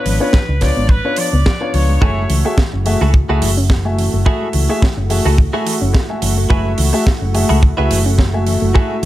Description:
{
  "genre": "nu-disco, nu disco",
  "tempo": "107 BPM",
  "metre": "4/4",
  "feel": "swing 55% on 16ths",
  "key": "F# minor",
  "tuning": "A4 = 440 Hz",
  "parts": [
    { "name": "clear trumpet section", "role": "melody", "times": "0.0-2.6 s", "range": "B4 to D5", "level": "-23 LUFS", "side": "equal", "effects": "tape echo" },
    { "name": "warm concert grand piano", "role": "accompaniment", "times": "0.0-9.1 s", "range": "A3 to G#5", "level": "-20 LUFS", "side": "left 2 dB", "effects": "sidechain pumping, slapback echo" },
    { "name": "soft round pluck", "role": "arpeggios", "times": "0.1-9.1 s", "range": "E3 to D4", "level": "-26 LUFS", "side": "left 2 dB", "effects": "chorus, sidechain pumping, tape echo" },
    { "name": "hollow-body short-scale fingered electric bass", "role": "bass", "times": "0.1-9.1 s", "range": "F#1 to C#2", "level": "-16 LUFS", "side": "equal", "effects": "sidechain pumping" },
    { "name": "tight funk drum kit", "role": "drums", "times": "0.1-9.1 s", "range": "hi-hat, snare drum", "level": "-23 LUFS", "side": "right 3 dB", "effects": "studio ambience" },
    { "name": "kick drum", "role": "drums", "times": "0.3-8.9 s", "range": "none", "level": "-13 LUFS", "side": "equal", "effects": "studio ambience" },
    { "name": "lush unison pad", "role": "sustained chords", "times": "2.0-9.1 s", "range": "A3 to F#4", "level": "-25 LUFS", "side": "equal", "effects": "chorus, sidechain pumping" },
    { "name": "direct-recorded clean electric guitar", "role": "riff", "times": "2.0-9.0 s", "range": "E4 to B4", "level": "-23 LUFS", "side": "right 2 dB", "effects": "wide subtle chorus, slapback echo" }
  ],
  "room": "studio reverb",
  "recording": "none",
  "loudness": "-12 LUFS",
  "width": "side -14 dB against mid",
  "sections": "0.0-9.1 A section",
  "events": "none",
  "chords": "0.0 C#7b9; 2.0 F#m9",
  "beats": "0.34 0.90 1.46 | 2.02 2.58 3.14 3.70 | 4.26 4.82 5.38 5.94 | 6.50 7.06 7.62 8.19 | 8.75"
}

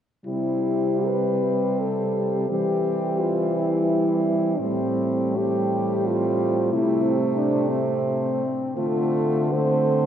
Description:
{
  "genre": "classical, lyrical piece for horn quartet",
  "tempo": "71-95 BPM",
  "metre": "3/4",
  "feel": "rubato",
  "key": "C major",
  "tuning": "A4 = 440 Hz",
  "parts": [
    { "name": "mellow French horn", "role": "melody", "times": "0.3-10.1 s", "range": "C4 to C5", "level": "-24 LUFS", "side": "left 2 dB", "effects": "none" },
    { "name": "mellow French horn", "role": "second line", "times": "0.3-10.1 s", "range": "C4", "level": "-29 LUFS", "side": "right 8 dB", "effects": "none" },
    { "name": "warm French horn", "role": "accompaniment", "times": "0.3-10.1 s", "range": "G3 to A3", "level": "-27 LUFS", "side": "equal", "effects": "none" },
    { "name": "mellow French horn", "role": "bass", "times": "0.3-10.1 s", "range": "A2 to E3", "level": "-27 LUFS", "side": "equal", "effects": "none" }
  ],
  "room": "wet cathedral reverb, RT60 6.5 s",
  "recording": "heard from further back in the room",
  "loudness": "-20 LUFS",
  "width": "side -9 dB against mid",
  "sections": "0.3-10.1 A section",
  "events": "none",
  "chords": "0.3 C; 2.5 C/E; 4.6 Am7; 6.7 Am/C; 8.8 Dm7",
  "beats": "| 0.26 1.07 1.80 | 2.50 3.20 3.89 | 4.59 5.38 6.07 | 6.73 7.37 8.02 | 8.77 9.53"
}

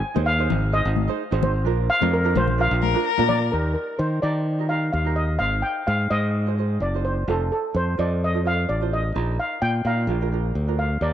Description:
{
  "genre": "calypso",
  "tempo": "128 BPM",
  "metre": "4/4",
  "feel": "swing 54% on 16ths",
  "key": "Eb major",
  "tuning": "A4 = 440 Hz",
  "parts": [
    { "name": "steel pan", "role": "melody", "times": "0.0-11.1 s", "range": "A4 to Ab5", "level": "-25 LUFS", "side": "left 1 dB", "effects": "none" },
    { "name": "tenor ukulele", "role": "accompaniment", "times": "0.1-11.1 s", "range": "D4 to Eb5", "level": "-30 LUFS", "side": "right 12 dB", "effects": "none" },
    { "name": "modern bright fingered electric bass", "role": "bass", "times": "0.2-11.1 s", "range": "F1 to Eb3", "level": "-22 LUFS", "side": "equal", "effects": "none" },
    { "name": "congas", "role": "percussion", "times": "0.2-3.4 s", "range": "none", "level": "-28 LUFS", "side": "left 12 dB", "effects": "none" },
    { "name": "rich erhu", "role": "second line", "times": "2.8-3.5 s", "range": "Bb4", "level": "-26 LUFS", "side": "left 13 dB", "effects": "none" }
  ],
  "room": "light reverb, studio ambience",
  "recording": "1960s-style stereo with parts hard left and right",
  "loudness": "-20 LUFS",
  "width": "side -10 dB against mid",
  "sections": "0.0-3.5 A section; 3.5-11.1 B section",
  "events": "steel pan solo 0.0-3.5",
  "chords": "0.0 Ab; 1.7 Bb; 3.5 Eb; 5.4 Ab; 7.3 F7; 9.2 Bbsus4; 10.1 Bb",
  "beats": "0.27 0.73 1.20 | 1.66 2.13 2.60 3.06 | 3.53 4.00 4.47 4.94 | 5.41 5.87 6.34 6.81 | 7.28 7.75 8.21 8.68 | 9.15 9.62 10.09 10.55 | 11.02"
}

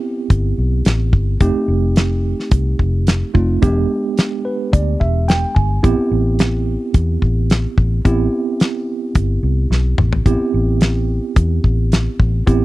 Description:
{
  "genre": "straight-eighth soul blues",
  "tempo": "108 BPM",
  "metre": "4/4",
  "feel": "straight",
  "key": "A minor",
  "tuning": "A4 = 443 Hz",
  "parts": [
    { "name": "mellow tine electric piano", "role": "accompaniment", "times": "0.0-12.6 s", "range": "G#3 to G#5", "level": "-20 LUFS", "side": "right 3 dB", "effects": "medium stereo tremolo" },
    { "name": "vintage muted fingered electric bass", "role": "bass", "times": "0.3-12.6 s", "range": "E1 to E2", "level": "-16 LUFS", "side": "left 1 dB", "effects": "none" },
    { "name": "damped 70s drum kit", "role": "drums", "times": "0.3-12.6 s", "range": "hi-hat, kick drum, snare drum, toms", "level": "-14 LUFS", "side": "left 1 dB", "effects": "none" }
  ],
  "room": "small room ambience",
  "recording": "dry, close 1970s-style studio recording",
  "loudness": "-14 LUFS",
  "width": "side -18 dB against mid",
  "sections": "0.0-10.3 A section; 10.3-12.6 B section",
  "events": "tine electric piano fill 4.2-5.8; drum fill 9.7-10.3",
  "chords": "0.0 Am7; 1.4 F7; 3.6 E7#9; 5.8 Am7",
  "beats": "0.30 0.86 | 1.41 1.96 2.52 3.07 | 3.62 4.18 4.73 5.28 | 5.84 6.39 6.94 7.50 | 8.05 8.60 9.15 9.71 | 10.26 10.81 11.36 11.92 | 12.47"
}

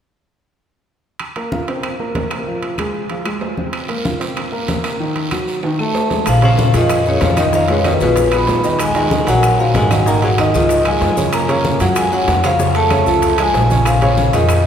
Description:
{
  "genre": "Afro-Cuban jazz",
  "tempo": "190 BPM",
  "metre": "4/4",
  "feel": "straight",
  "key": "unclear",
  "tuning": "A4 = 440 Hz",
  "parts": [
    { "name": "claves", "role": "percussion", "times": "1.2-14.6 s", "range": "none", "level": "-33 LUFS", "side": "left 2 dB", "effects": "none" },
    { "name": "congas", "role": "percussion", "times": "1.2-14.7 s", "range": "none", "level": "-26 LUFS", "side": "left 1 dB", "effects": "none" },
    { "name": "timbales", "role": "percussion", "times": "1.2-14.6 s", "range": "none", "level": "-25 LUFS", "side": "right 3 dB", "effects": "none" },
    { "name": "warm upright piano", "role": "accompaniment", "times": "1.4-14.6 s", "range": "Db3 to F5", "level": "-19 LUFS", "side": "right 1 dB", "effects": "none" },
    { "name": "guiro", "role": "percussion", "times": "3.7-14.7 s", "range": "none", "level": "-30 LUFS", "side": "right 4 dB", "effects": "none" },
    { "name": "vibraphone with medium hard mallets", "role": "melody", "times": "5.8-14.7 s", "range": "Cb5 to Cb6", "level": "-17 LUFS", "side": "left 1 dB", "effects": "none" },
    { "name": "breathy tenor saxophone", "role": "second line", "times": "5.8-14.6 s", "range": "Cb3 to Cb4", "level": "-22 LUFS", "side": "left 3 dB", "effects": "none" },
    { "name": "upright bass", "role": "bass", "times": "6.3-14.7 s", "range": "Ab1 to Gb2", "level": "-17 LUFS", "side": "equal", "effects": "none" },
    { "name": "bongos", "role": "percussion", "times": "6.3-14.7 s", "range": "none", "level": "-27 LUFS", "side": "left 4 dB", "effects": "none" },
    { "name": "maracas", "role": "percussion", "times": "6.3-14.7 s", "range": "none", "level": "-33 LUFS", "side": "left 4 dB", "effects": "none" }
  ],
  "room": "wet church reverb, RT60 3.4 s",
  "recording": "recorded in a church or concert hall",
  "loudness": "-13 LUFS",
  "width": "side -8 dB against mid",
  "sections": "1.2-6.3 A section; 6.3-14.7 B section",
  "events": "drum fill 5.6-6.3",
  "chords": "1.2 Fsus4; 2.5 Fm; 3.7 Fsus4; 5.0 Ebm; 5.6 Ebsus4; 6.3 Bbm7; 7.5 Fm7b5; 8.2 Bb5; 8.8 Ebmadd11; 10.1 Ab5; 10.7 Db; 11.3 Gbmaj7; 12.6 Faug; 13.9 Bbm7",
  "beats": "| 1.20 1.52 1.84 2.15 | 2.47 2.79 3.10 3.42 | 3.74 4.05 4.37 4.69 | 5.00 5.32 5.64 5.96 | 6.27 6.59 6.91 7.22 | 7.54 7.85 8.17 8.49 | 8.80 9.12 9.44 9.75 | 10.07 10.38 10.70 11.02 | 11.33 11.65 11.96 12.28 | 12.60 12.91 13.23 13.54 | 13.86 14.18 14.49"
}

